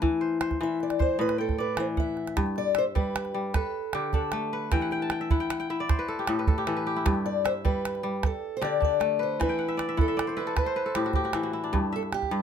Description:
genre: west african traditional, West African string and xylophone music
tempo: 102 BPM (dotted quarters)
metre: 12/8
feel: straight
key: G major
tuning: A4 = 440 Hz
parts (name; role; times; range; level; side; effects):
- kora; arpeggios; 0.0-12.4 s; G2 to A5; -28 LUFS; left 2 dB; none
- calabash; percussion; 0.0-12.3 s; none; -27 LUFS; right 3 dB; none
- fingerpicked acoustic archtop guitar; melody; 0.6-12.4 s; G4 to E5; -29 LUFS; left 1 dB; none
room: moderate small room reverb, RT60 0.5 s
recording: close, detailed microphones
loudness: -25 LUFS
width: side -8 dB against mid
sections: 0.0-2.4 A section; 2.4-11.7 B section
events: steel-string acoustic guitar solo 0.0-2.4; kora fill 4.7-7.1, 9.5-11.7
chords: 0.0 E5; 1.2 Am; 2.4 G; 3.5 D5; 4.7 Em; 5.9 A5; 7.1 G; 8.2 D5; 9.4 E5; 10.6 Am; 11.7 G5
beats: | 0.02 0.61 1.20 1.78 | 2.37 2.96 3.55 4.13 | 4.72 5.31 5.89 6.48 | 7.07 7.65 8.24 8.82 | 9.41 9.99 10.57 11.16 | 11.74 12.32

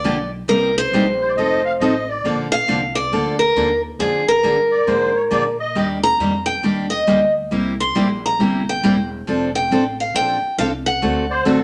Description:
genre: acoustic string swing (jazz manouche)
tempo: 137 BPM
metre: 4/4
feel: swing 64% on 8ths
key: unclear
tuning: A4 = 440 Hz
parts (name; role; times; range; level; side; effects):
- picked steel-string acoustic guitar; melody; 0.0-11.6 s; Ab4 to C6; -21 LUFS; equal; none
- picked steel-string acoustic guitar; accompaniment; 0.0-11.6 s; C3 to A4; -22 LUFS; equal; none
- upright bass; bass; 0.0-11.6 s; E1 to Bb2; -33 LUFS; equal; none
- musette accordion; second line; 1.2-5.9, 11.3-11.6 s; A4 to F5; -24 LUFS; equal; none
room: wet studio reverb, RT60 0.8 s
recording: none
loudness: -18 LUFS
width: mono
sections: 0.0-11.6 A section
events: none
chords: 0.5 Cm7; 1.4 F7; 2.2 Bbmaj7; 4.0 Bb7; 5.8 Ebmaj7; 7.5 C7; 9.3 F6; 11.0 D7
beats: 0.04 | 0.48 0.93 1.36 1.80 | 2.25 2.68 3.12 3.56 | 4.00 4.44 4.88 5.32 | 5.76 6.20 6.64 7.08 | 7.51 7.95 8.39 8.83 | 9.27 9.71 10.14 10.58 | 11.02 11.46

